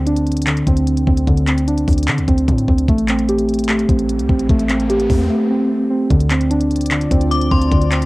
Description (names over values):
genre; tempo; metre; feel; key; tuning
hip hop, trap; 149 BPM; 4/4; half-time; unclear; A4 = 440 Hz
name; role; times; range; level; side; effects
muted felt-like synth keys; arpeggios; 0.0-8.1 s; D3 to G4; -16 LUFS; right 1 dB; chorus, cassette tape, tape echo
hard-hitting 808-style bass; bass; 0.0-8.1 s; A1 to D3; -20 LUFS; equal; none
trap drum kit; drums; 0.1-8.1 s; handclaps, hi-hat, kick drum; -18 LUFS; equal; cassette tape
riser; sound effects; 3.9-5.3 s; none; -31 LUFS; left 2 dB; none
dark analog pad; sustained chords; 6.4-8.1 s; F4 to A5; -27 LUFS; left 2 dB; chorus, cassette tape
metallic FM bell; second line; 7.3-7.7 s; C6 to D6; -22 LUFS; left 5 dB; chorus, cassette tape, tape echo
room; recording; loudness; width
little or no reverb; home recording on cassette; -14 LUFS; side -20 dB against mid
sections
0.0-6.1 A section; 6.1-8.1 B section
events
riser 3.9-6.1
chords
0.0 D5; 2.9 Am7; 6.1 Dm7